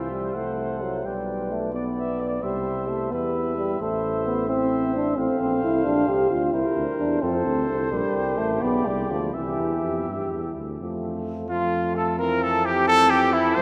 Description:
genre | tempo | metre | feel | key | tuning
classical, brass quintet | 87 BPM (dotted quarters) | 6/8 | straight | F major from 5.2 s | A4 = 440 Hz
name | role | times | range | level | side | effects
warm trumpet | melody | 0.0-13.6 s | E4 to G5 | -30 LUFS | equal | none
clear flugelhorn | second line | 0.0-13.6 s | E4 to E5 | -32 LUFS | equal | none
clear euphonium | accompaniment | 0.0-13.6 s | E3 to G4 | -28 LUFS | equal | none
mellow French horn | accompaniment | 0.0-13.6 s | A3 to B4 | -33 LUFS | equal | none
mellow bass trombone | bass | 0.0-13.6 s | A1 to G2 | -33 LUFS | equal | none
room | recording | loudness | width
wet cathedral reverb, RT60 5.3 s | none | -24 LUFS | mono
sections
0.0-10.8 A section; 10.8-13.6 B section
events
none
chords
0.3 F#dim/C; 1.0 G/B; 2.4 C; 3.1 Em; 3.8 Am; 5.2 F/A; 5.8 Gm/Bb; 6.5 C7; 7.2 F; 7.9 Gm/Bb; 8.6 G7b9/B; 9.3 C; 10.8 F; 12.2 C/F

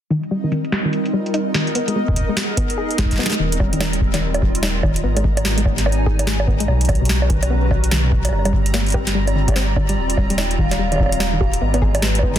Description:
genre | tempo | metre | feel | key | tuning
IDM | 146 BPM | 4/4 | swing 62% on 16ths | Eb major | A4 = 442 Hz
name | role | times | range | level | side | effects
hollow soft pad | sustained chords | 0.1-12.4 s | D#3 to Bb5 | -26 LUFS | equal | ensemble chorus
soft round pluck | arpeggios | 0.1-12.4 s | B2 to Ab4 | -24 LUFS | left 2 dB | chorus, cassette tape, dub echo
booming analog drum machine | drums | 0.1-12.4 s | bongos, hi-hat, snare drum | -22 LUFS | right 2 dB | low-pass filter on hats, low-pass filter on snare, low-pass filter on perc, low-pass filter on room
bubbling stepped-filter texture | texture | 0.1-12.4 s | G3 to Bb5 | -30 LUFS | equal | chorus, built-in reverb, sidechain pumping
electronic kick drum | drums | 2.1-12.3 s | none | -20 LUFS | equal | none
warm sub bass | bass | 3.4-12.4 s | Eb1 to B1 | -20 LUFS | equal | none
warbly nostalgic lead | melody | 10.4-12.4 s | Cb5 to G5 | -27 LUFS | equal | wide subtle chorus, dub echo
room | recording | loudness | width
little or no reverb | dense, heavily limited modern master | -16 LUFS | side -11 dB against mid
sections
0.1-3.4 A section; 3.4-12.4 B section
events
filter sweep on drum 0.1-3.4; filter sweep on analog synth pad 0.1-3.4; filter sweep on synth arpeggio sound 0.1-3.4; drum fill 3.0-3.4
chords
0.1 Eb; 1.8 Abmadd9; 3.4 Eb; 5.0 Abmadd9; 6.7 Badd9; 8.3 Gm7; 10.0 Eb; 11.6 Abmadd9

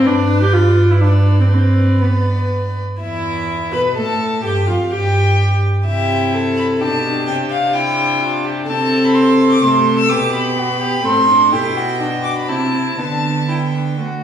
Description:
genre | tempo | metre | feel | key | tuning
quick classical-period movement for string quartet | 125 BPM | 3/4 | uneven beats, rubato | C major, G major from 8.7 s | A4 = 444 Hz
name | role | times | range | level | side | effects
warm violin | melody | 0.0-14.0 s | D5 to E6 | -19 LUFS | equal | none
rich violin | second line | 0.0-14.2 s | D4 to B4 | -22 LUFS | left 1 dB | none
warm viola | accompaniment | 0.0-14.1 s | A3 to B4 | -20 LUFS | equal | none
rich cello | bass | 0.1-14.1 s | E2 to D3 | -17 LUFS | right 1 dB | none
room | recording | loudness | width
wet stone room reverb, RT60 1.2 s | heard from further back in the room, studio reverb | -13 LUFS | side -9 dB against mid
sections
0.0-3.0 A section; 3.0-14.2 B section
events
none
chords
0.1 G; 3.0 E5; 4.0 N.C.; 4.4 Fsus2; 5.9 C; 6.8 G/B; 7.3 C; 8.7 Am/C; 10.1 G/B; 11.0 Amadd11; 11.5 G/B; 12.5 Am/C; 13.0 G/D

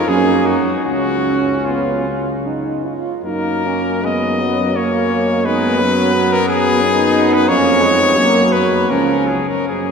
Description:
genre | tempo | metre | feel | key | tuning
classical, hymn-like piece for brass band | 72-92 BPM | 3/4 | rubato | F# major | A4 = 440 Hz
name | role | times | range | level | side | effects
clear cornet | melody | 0.0-9.9 s | E#4 to D#5 | -18 LUFS | left 3 dB | none
mellow French horn section | second line | 0.0-9.9 s | A#3 to E#4 | -19 LUFS | right 3 dB | none
bright trombone | accompaniment | 0.0-9.9 s | E#3 to C#4 | -22 LUFS | right 2 dB | none
bright trombone section | accompaniment | 0.0-9.9 s | A#3 to D#4 | -22 LUFS | left 1 dB | none
warm tuba | bass | 0.0-9.9 s | C#2 to F#2 | -21 LUFS | equal | none
room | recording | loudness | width
wet cathedral reverb, RT60 6.0 s | heard from further back in the room | -13 LUFS | side -6 dB against mid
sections
0.0-9.9 A section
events
none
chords
0.1 F#; 0.8 C#; 3.2 F#; 5.4 G#m7/F#; 7.5 C#7/E#; 8.2 F#; 8.9 C#6

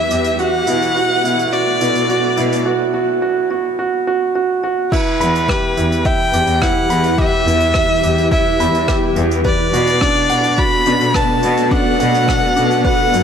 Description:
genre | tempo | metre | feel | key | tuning
piano and strings electronica | 106 BPM | 4/4 | straight | E minor | A4 = 436 Hz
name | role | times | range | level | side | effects
rich violin | melody | 0.0-13.2 s | B4 to B5 | -17 LUFS | equal | ping-pong delay
granular cloud pad | sustained chords | 0.0-13.2 s | B3 to D5 | -21 LUFS | left 1 dB | built-in reverb
warm grand piano | riff | 0.0-13.2 s | D4 to B5 | -18 LUFS | right 3 dB | ping-pong delay
clear symphonic cello section | bass | 0.1-13.2 s | E2 to B2 | -20 LUFS | left 1 dB | sidechain pumping
vintage brush drum kit | drums | 0.1-13.2 s | crash cymbal, hi-hat, rim click | -27 LUFS | right 2 dB | none
electronic kick drum | drums | 4.9-13.0 s | none | -20 LUFS | left 1 dB | overdrive
room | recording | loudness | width
moderate lush hall reverb, RT60 1.7 s, small room reverb | none | -13 LUFS | side -7 dB against mid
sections
0.0-4.9 A section; 4.9-13.2 B section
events
build-up 0.0-4.9; break 2.7-4.9; drop 4.9-13.2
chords
0.4 Bm7; 4.9 Em; 9.4 Bm7

